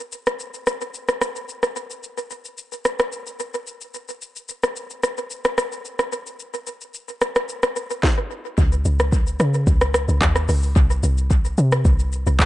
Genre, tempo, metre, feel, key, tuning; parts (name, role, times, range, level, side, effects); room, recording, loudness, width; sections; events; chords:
amapiano; 110 BPM; 4/4; straight; A4 = 442 Hz
afro-pop drum kit; drums; 0.1-12.5 s; handclaps, hi-hat, kick drum, rim click, shaker, snare drum; -21 LUFS; equal; tape echo
deep log drum bass; bass; 8.6-12.5 s; Bb1 to Db3; -19 LUFS; equal
light reverb; echo-heavy mix, nothing above 11.0 kHz; -19 LUFS; side -16 dB against mid
0.0-8.6 A section; 8.6-12.5 B section
drop 8.6-12.5